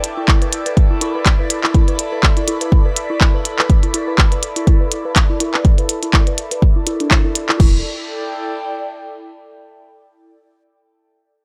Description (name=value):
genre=minimal techno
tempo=123 BPM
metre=4/4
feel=swing 56% on 16ths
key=E minor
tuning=A4 = 441 Hz
part: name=minimal click drum kit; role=drums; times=0.0-7.7 s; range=crash cymbal, handclaps, hi-hat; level=-20 LUFS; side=equal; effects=none
part: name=airy breathy pad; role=texture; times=0.0-9.5 s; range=E4 to B5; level=-28 LUFS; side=equal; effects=chorus, phaser, sidechain pumping
part: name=dark detuned synth bell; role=riff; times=0.2-7.8 s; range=D4 to B4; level=-26 LUFS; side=equal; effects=chorus, sidechain pumping, low-pass filter, analog delay
part: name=electronic kick drum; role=drums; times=0.3-7.7 s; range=none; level=-15 LUFS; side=equal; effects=none
part: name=woody FM bass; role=bass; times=7.6-7.8 s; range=E1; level=-23 LUFS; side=equal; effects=none
room=little or no reverb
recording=dry, gritty hardware recording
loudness=-16 LUFS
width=mono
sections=0.0-7.6 A section; 7.6-9.6 B section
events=filter sweep on synth bell 0.0-7.6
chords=0.0 Em